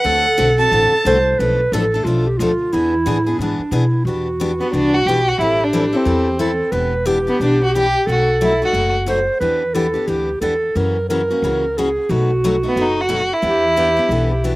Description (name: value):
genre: acoustic string swing (jazz manouche)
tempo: 179 BPM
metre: 4/4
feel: swing 60% on 8ths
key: E minor from 4.1 s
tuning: A4 = 441 Hz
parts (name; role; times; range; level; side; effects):
- warm violin; melody; 0.0-1.2, 4.6-8.9, 12.7-14.5 s; B3 to A5; -17 LUFS; equal; none
- breathy clarinet; second line; 0.0-14.6 s; D4 to C5; -19 LUFS; right 1 dB; slapback echo
- picked steel-string acoustic guitar; accompaniment; 0.0-14.6 s; B2 to A4; -22 LUFS; left 3 dB; slapback echo
- upright bass; bass; 0.0-14.6 s; E1 to B2; -22 LUFS; equal; none
room: little or no reverb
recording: recorded outdoors, with no room sound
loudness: -14 LUFS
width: side -19 dB against mid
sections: 0.0-4.1 A section; 4.1-14.6 B section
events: none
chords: 0.0 D7; 1.4 Bm7b5; 2.7 E7; 4.1 Em7; 5.4 Am7; 6.7 Em7; 8.1 B7b9; 9.4 Em7; 10.8 F#7; 12.1 B7; 13.4 Em7